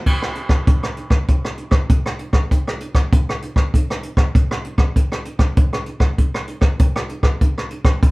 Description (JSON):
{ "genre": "samba", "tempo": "98 BPM", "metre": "4/4", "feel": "straight", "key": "none", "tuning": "none", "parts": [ { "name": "jazz brush drum kit", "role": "drums", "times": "0.1-8.1 s", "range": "crash cymbal, hi-hat, kick drum, rim click", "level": "-16 LUFS", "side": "equal", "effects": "none" } ], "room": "wet small room reverb, RT60 0.5 s", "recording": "heard from further back in the room", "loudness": "-16 LUFS", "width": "side -23 dB against mid", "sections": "0.1-8.1 A section", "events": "none", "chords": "none" }